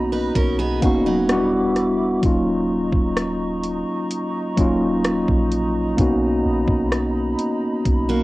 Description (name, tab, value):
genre	contemporary R&B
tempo	64 BPM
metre	4/4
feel	straight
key	Eb minor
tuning	A4 = 440 Hz
part	mellow tine electric piano	accompaniment	0.0-8.2 s	Gb3 to F#4	-20 LUFS	equal	medium stereo tremolo, cassette tape
part	bright large flute ensemble	sustained chords	0.0-8.2 s	Eb4 to D6	-31 LUFS	right 2 dB	cassette tape
part	soft 808-style bass	bass	0.0-8.2 s	Eb1 to B1	-28 LUFS	equal	none
part	picked steel-string acoustic guitar	arpeggios	0.1-1.5, 8.1-8.2 s	F#3 to B4	-26 LUFS	right 4 dB	cassette tape
part	smooth R&B drum kit	drums	0.4-8.1 s	hi-hat, kick drum, rim click	-21 LUFS	equal	vintage 12-bit sampler grit, cassette tape
room	light reverb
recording	home recording on cassette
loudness	-18 LUFS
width	side -19 dB against mid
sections	0.0-8.2 A section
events	none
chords	0.0 Bmaj7; 1.3 Em7; 2.2 Ebm7; 6.0 Bmaj7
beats	0.35 1.29 | 2.23 3.17 4.11 5.04 | 5.98 6.92 7.86